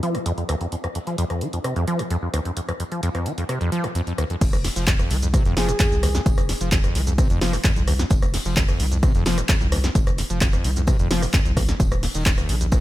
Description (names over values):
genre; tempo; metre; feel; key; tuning
acid house; 130 BPM; 4/4; straight; F minor; A4 = 436 Hz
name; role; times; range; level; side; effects
acid bass, saw; riff; 0.0-12.8 s; Eb2 to F3; -25 LUFS; equal; analog chorus
punchy analog drum machine; drums; 0.0-12.8 s; crash cymbal, handclaps, hi-hat, rim click, shaker, snare drum; -27 LUFS; equal; none
warm soul drum kit; drums; 0.0-12.8 s; hi-hat, snare drum, tambourine; -41 LUFS; left 2 dB; none
saturated sub bass; bass; 4.4-12.8 s; Eb1 to C2; -24 LUFS; equal; tube saturation, sidechain pumping
electronic kick drum; drums; 4.4-12.8 s; none; -20 LUFS; equal; none
breathy flute-like synth lead; melody; 5.6-6.2 s; Ab4; -29 LUFS; equal; chorus, tremolo, tape echo
room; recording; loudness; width
digital ambience; none; -19 LUFS; side -15 dB against mid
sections
0.0-4.4 A section; 4.4-12.8 B section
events
filter sweep on acid bass 0.0-4.4; drop 4.4-12.8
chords
0.0 F5; 11.8 Eb5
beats
0.26 | 0.72 1.18 1.64 2.11 | 2.57 3.03 3.49 3.95 | 4.41 4.88 5.34 5.80 | 6.26 6.72 7.18 7.64 | 8.11 8.57 9.03 9.49 | 9.95 10.41 10.88 11.34 | 11.80 12.26 12.72